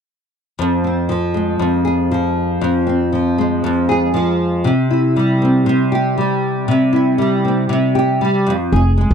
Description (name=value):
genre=pop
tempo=118 BPM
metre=4/4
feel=straight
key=F harmonic minor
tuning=A4 = 440 Hz
part: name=nylon-string guitar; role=accompaniment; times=0.6-9.1 s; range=F2 to Ab4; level=-14 LUFS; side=equal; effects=double-tracked left and right
part: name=upright bass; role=bass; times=8.7-9.1 s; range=E1 to F1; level=-12 LUFS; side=equal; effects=none
room=light reverb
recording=dry, close 1970s-style studio recording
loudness=-14 LUFS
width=side -7 dB against mid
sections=0.6-8.7 A section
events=none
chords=0.6 Fm; 4.6 C; 8.5 N.C.